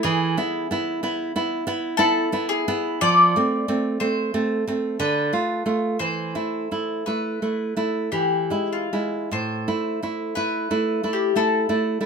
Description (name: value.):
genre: romantic duo for mandolin and classical guitar.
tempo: 47-63 BPM.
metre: 3/4.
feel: rubato.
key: unclear.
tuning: A4 = 440 Hz.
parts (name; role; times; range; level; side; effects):
mandolin; melody; 0.0-12.1 s; F4 to D5; -23 LUFS; left 3 dB; none.
nylon-string guitar; accompaniment; 0.0-12.1 s; A2 to F4; -23 LUFS; right 2 dB; none.
room: moderate studio reverb, RT60 0.6 s.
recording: minimal, uncompressed stereo recording.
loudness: -21 LUFS.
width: side -6 dB against mid.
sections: 0.0-12.1 A section.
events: none.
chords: 0.0 E; 3.0 F; 5.0 Bm7b5/D; 6.0 Esus4; 8.1 E; 9.3 Am.